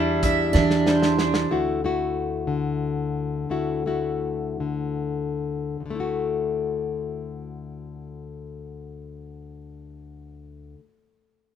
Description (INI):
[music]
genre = acoustic folk duo or small band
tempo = 46-63 BPM (dotted quarters)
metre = 6/8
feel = straight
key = D major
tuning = A4 = 440 Hz
[part]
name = picked steel-string acoustic guitar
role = melody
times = 0.0-1.2 s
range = D4 to E4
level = -25 LUFS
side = right 5 dB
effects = none
[part]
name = nylon-string guitar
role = accompaniment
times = 0.0-10.9 s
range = D2 to F#4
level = -26 LUFS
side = left 4 dB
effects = none
[part]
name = mandolin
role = arpeggios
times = 0.0-1.6 s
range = G3 to E5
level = -25 LUFS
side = right 2 dB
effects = none
[part]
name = upright bass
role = bass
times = 0.0-1.5 s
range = E2 to E3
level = -26 LUFS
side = right 3 dB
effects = none
[part]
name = loose indie drum kit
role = drums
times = 0.2-1.5 s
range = hi-hat, kick drum, snare drum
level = -27 LUFS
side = equal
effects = none
[sound]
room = light reverb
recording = minimal, uncompressed stereo recording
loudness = -22 LUFS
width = side -9 dB against mid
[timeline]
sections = 0.0-1.5 A section; 1.5-5.8 B section; 5.8-11.0 C section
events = drum fill 0.5-1.5; slowing down 1.5-5.8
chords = 0.0 Cadd9/E; 1.5 Dadd9